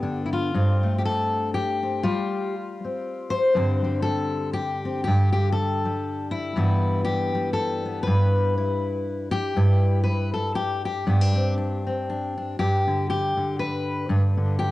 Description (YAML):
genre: folk, solo fingerstyle acoustic guitar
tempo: 120 BPM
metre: 3/4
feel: swing 56% on 8ths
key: G mixolydian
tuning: A4 = 440 Hz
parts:
  - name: fingerpicked steel-string acoustic guitar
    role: solo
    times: 0.0-14.7 s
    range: G2 to C5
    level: -22 LUFS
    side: equal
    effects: cassette tape
room: light reverb, studio reverb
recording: home recording on cassette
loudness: -22 LUFS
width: side -16 dB against mid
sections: 0.5-12.6 A section; 12.6-14.7 B section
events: none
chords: 0.0 G; 0.5 F/G; 3.5 Gsus4; 6.6 Em/G; 9.6 Cadd9/G; 12.6 G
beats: 0.04 | 0.54 1.04 1.54 | 2.04 2.54 3.05 | 3.55 4.05 4.55 | 5.05 5.56 6.06 | 6.56 7.06 7.56 | 8.06 8.56 9.07 | 9.57 10.07 10.57 | 11.07 11.57 12.08 | 12.58 13.08 13.58 | 14.09 14.59